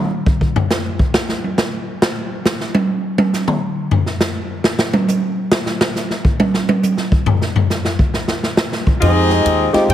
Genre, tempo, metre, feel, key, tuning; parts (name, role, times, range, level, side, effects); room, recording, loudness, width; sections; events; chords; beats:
jazz, big band swing; 137 BPM; 4/4; swing 65% on 8ths; F minor; A4 = 440 Hz
swinging big-band drum kit; drums; 0.3-9.9 s; hi-hat, kick drum, ride cymbal, snare drum, toms; -15 LUFS; equal
clear trumpet section; melody; 9.0-9.9 s; C4 to Eb5; -16 LUFS; left 3 dB
clear trombone section; second line; 9.0-9.9 s; Ab3 to G4; -20 LUFS; right 2 dB
warm saxophone section; sustained chords; 9.0-9.8 s; F3 to G4; -22 LUFS; left 1 dB
upright bass; bass; 9.0-9.9 s; Eb2 to Ab2; -16 LUFS; equal
warm grand piano; accompaniment; 9.7-9.9 s; Ab3 to G4; -13 LUFS; equal
moderate club reverb, RT60 0.7 s; heavily compressed radio sound; -15 LUFS; side -11 dB against mid
0.0-9.0 A section
drum solo 0.0-9.0
0.0 N.C.; 9.0 Fm9
| 0.27 0.70 1.14 1.58 | 2.02 2.45 2.89 3.33 | 3.77 4.21 4.64 5.08 | 5.52 5.96 6.39 6.83 | 7.27 7.70 8.14 8.58 | 9.02 9.45 9.89